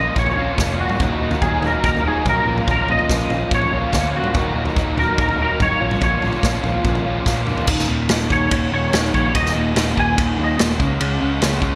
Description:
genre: indie rock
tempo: 144 BPM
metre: 4/4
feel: straight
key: Eb minor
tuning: A4 = 440 Hz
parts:
  - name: twangy electric guitar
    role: melody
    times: 0.0-10.6 s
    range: Gb4 to Ab5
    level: -24 LUFS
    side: equal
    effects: ensemble chorus, delay
  - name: overdriven electric guitar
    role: riff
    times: 0.0-11.8 s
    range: Eb2 to F4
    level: -26 LUFS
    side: equal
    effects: ensemble chorus, delay
  - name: raw garage guitar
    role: riff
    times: 0.0-11.8 s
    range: Eb2 to F4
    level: -28 LUFS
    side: equal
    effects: overdrive, ensemble chorus
  - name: picked electric bass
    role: bass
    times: 0.0-11.8 s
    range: Eb1 to Bb2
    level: -27 LUFS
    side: equal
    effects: none
  - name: unplugged drum kit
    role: drums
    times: 0.2-11.7 s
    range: crash cymbal, kick drum, ride cymbal, snare drum, toms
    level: -24 LUFS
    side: equal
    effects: none
room: moderate plate reverb, RT60 1.5 s, small room ambience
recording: bright 1980s-style digital production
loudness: -19 LUFS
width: mono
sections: 0.0-7.7 A section; 7.7-11.8 B section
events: drum fill 7.3-7.7; clean electric guitar solo 7.7-11.8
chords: 0.0 Bbm; 1.0 Ebm; 2.5 Bbm; 4.3 Ebm; 5.8 Bbm; 7.7 Eb5; 10.8 Db5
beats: 0.17 0.58 | 1.00 1.42 1.84 2.26 | 2.67 3.09 3.51 3.93 | 4.35 4.76 5.18 5.60 | 6.01 6.43 6.85 7.26 | 7.68 8.10 8.51 8.93 | 9.34 9.76 10.17 10.59 | 11.00 11.42

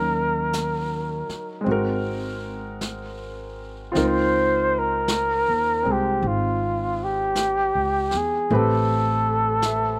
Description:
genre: jazz ballad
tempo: 53 BPM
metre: 4/4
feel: swing 67% on 8ths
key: unclear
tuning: A4 = 440 Hz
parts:
  - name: mellow flugelhorn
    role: melody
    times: 0.0-10.0 s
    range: F4 to C5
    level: -24 LUFS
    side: equal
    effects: slapback echo
  - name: clear baby grand piano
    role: accompaniment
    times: 0.0-10.0 s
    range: Gb3 to E5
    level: -30 LUFS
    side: equal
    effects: slapback echo
  - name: upright bass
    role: bass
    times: 0.0-10.0 s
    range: Ab1 to Fb2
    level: -30 LUFS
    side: equal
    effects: none
  - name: jazz brush drum kit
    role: drums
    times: 0.5-10.0 s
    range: brushed snare drum, hi-hat, snare drum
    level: -35 LUFS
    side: equal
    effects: none
room: little or no reverb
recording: recorded outdoors, with no room sound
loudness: -23 LUFS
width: mono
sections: 0.0-10.0 A section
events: none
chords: 0.0 Ebm7; 1.7 Ab9; 4.0 Dbmaj13; 8.5 Am9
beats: 0.52 1.66 2.81 | 3.95 5.09 6.23 7.36 | 8.50 9.63

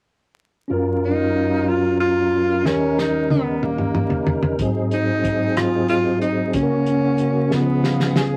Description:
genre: slow gospel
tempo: 62 BPM (dotted quarters)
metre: 6/8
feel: straight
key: F# major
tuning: A4 = 443 Hz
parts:
  - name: mellow tine electric piano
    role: accompaniment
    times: 0.7-8.4 s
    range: C#2 to G#5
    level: -25 LUFS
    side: equal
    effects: none
  - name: tonewheel organ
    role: sustained chords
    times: 0.7-8.4 s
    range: C#3 to A#4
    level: -25 LUFS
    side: equal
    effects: slow rotary speaker, chorus vibrato
  - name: breathy tenor saxophone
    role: melody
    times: 1.0-8.4 s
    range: A#3 to G#4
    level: -24 LUFS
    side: equal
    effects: none
  - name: warm soul drum kit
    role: drums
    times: 2.7-8.3 s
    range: hi-hat, kick drum, rim click, snare drum, toms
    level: -25 LUFS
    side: equal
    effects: none
room: moderate studio ambience, RT60 0.5 s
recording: vinyl crackle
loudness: -20 LUFS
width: mono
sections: 0.7-8.4 A section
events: drum fill 2.7-4.6, 7.5-8.4; tine electric piano fill 7.5-8.4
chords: 0.7 F#maj7; 2.7 D#7; 4.6 G#7; 6.5 F#/C#; 7.5 C#7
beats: | 0.71 1.68 | 2.65 3.63 | 4.60 5.57 | 6.55 7.52

